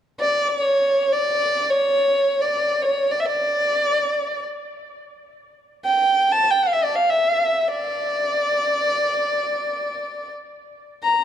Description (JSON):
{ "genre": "arabic", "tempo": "free time", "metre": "none", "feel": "none", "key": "D maqam nahawand", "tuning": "A4 = 441 Hz", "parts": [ { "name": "dark violin", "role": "melody", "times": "0.2-11.2 s", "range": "C#5 to Bb5", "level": "-19 LUFS", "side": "equal", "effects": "tape echo" } ], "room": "moderate scoring stage reverb, RT60 2.0 s", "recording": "dark, warm production", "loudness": "-18 LUFS", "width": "side -9 dB against mid", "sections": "0.0-11.2 A section", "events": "none", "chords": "none" }